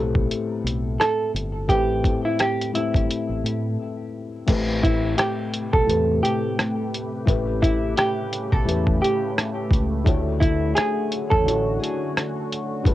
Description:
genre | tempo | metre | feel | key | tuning
lo-fi hip hop | 86 BPM | 4/4 | swing 57% on 16ths | unclear | A4 = 439 Hz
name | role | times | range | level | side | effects
felt-muted upright piano | accompaniment | 0.0-12.9 s | A2 to C#5 | -27 LUFS | left 4 dB | cassette tape, low-pass filter, plate reverb
deep dub fingered electric bass | bass | 0.0-12.9 s | G1 to A2 | -26 LUFS | equal | none
lo-fi sampler-style drum kit | drums | 0.2-12.9 s | crash cymbal, hi-hat, kick drum, rim click | -22 LUFS | equal | vintage 12-bit sampler grit, cassette tape
vintage hollow-body jazz guitar | melody | 1.0-12.3 s | E4 to A4 | -24 LUFS | right 2 dB | low-pass filter, analog delay, plate reverb
deep dark ambient pad | sustained chords | 5.6-12.9 s | C3 to G5 | -30 LUFS | right 1 dB | chorus, built-in reverb, low-pass filter, cassette tape, plate reverb
room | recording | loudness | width
moderate booth ambience, RT60 0.2 s | home recording on cassette | -20 LUFS | side -14 dB against mid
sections
0.0-4.5 A section; 4.5-12.9 B section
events
break 3.8-4.5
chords
0.0 Am9; 7.3 A9; 10.1 Dmaj7

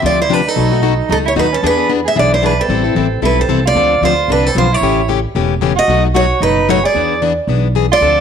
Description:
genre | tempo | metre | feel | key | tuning
acoustic string swing (jazz manouche) | 226 BPM | 4/4 | swing 57% on 8ths | A minor | A4 = 439 Hz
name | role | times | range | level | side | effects
picked plugged-in steel-string acoustic guitar | accompaniment | 0.0-8.2 s | B2 to A4 | -17 LUFS | left 10 dB | none
upright bass | bass | 0.0-8.2 s | E1 to E2 | -18 LUFS | equal | none
picked steel-string acoustic guitar | melody | 0.1-8.2 s | A4 to E5 | -15 LUFS | right 2 dB | none
warm soprano saxophone | second line | 0.1-8.2 s | C4 to G#4 | -19 LUFS | right 10 dB | none
room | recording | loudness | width
moderate echo chamber reverb, RT60 1.2 s, small room ambience | 1960s-style stereo with parts hard left and right | -11 LUFS | side -7 dB against mid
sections
0.0-3.8 A section; 3.8-8.2 B section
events
none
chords
0.0 G7sus4; 0.6 B7; 1.6 E7; 2.7 Am7; 3.8 Dm7; 4.8 A7; 5.9 B7; 6.9 E7

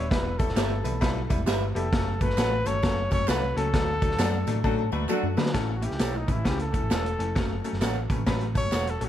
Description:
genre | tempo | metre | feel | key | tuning
uptempo 1960s-style soul | 132 BPM | 4/4 | swing 62% on 8ths | A mixolydian | A4 = 442 Hz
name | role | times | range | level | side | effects
clear trumpet | melody | 0.0-9.1 s | D#4 to C#5 | -31 LUFS | left 1 dB | tape echo
bright upright piano | accompaniment | 0.0-9.1 s | E3 to C#5 | -31 LUFS | left 3 dB | none
picked electric bass | bass | 0.0-9.1 s | E1 to D3 | -29 LUFS | equal | none
vintage drum kit | drums | 0.1-9.1 s | hi-hat, kick drum, snare drum | -28 LUFS | equal | none
congas | percussion | 0.1-9.0 s | none | -41 LUFS | right 3 dB | none
tambourine and handclaps | percussion | 0.4-8.9 s | none | -44 LUFS | right 7 dB | none
electric guitar through a small old amp | stabs | 0.6-8.9 s | E4 to F#5 | -36 LUFS | right 3 dB | warbly pitch drift, tape echo
mellow saxophone section | second line | 4.6-5.5 s | D3 to F#4 | -35 LUFS | equal | tape echo
semi-hollow electric guitar | riff | 4.6-5.5 s | F#3 to A4 | -33 LUFS | left 5 dB | harmonic tremolo
room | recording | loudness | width
light reverb | dark, warm production | -23 LUFS | side -11 dB against mid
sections
0.0-5.5 A section; 5.5-9.1 B section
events
band accent 3.7-5.5; drum fill 4.6-5.5; trumpet solo 5.5-9.1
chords
0.1 Em; 1.9 F#m; 3.7 D; 5.5 A; 7.4 F#m

